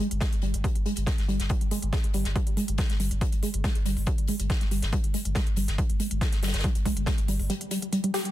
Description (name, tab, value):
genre	driving peak-time techno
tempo	140 BPM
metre	4/4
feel	straight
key	unclear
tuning	A4 = 442 Hz
part	tight sequenced synth	riff	0.0-8.2 s	G3 to G4	-31 LUFS	equal	chorus, sidechain pumping, ping-pong delay
part	natural country drum kit	drums	0.0-8.2 s	hi-hat, snare drum	-38 LUFS	left 2 dB	high-pass filter on hats, high-pass filter on snare, high-pass filter on room
part	saturated sub bass	bass	0.1-7.5 s	G1	-30 LUFS	equal	tube saturation, sidechain pumping, low-pass filter
part	electronic hi-hat	drums	0.1-8.3 s	none	-37 LUFS	left 1 dB	sidechain pumping on hats
part	electronic kick drum	drums	0.2-7.2 s	none	-27 LUFS	equal	none
room	light reverb, small room ambience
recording	dense, heavily limited modern master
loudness	-24 LUFS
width	side -14 dB against mid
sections	0.0-8.3 A section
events	filter sweep on synth arpeggio sound 0.0-8.3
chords	none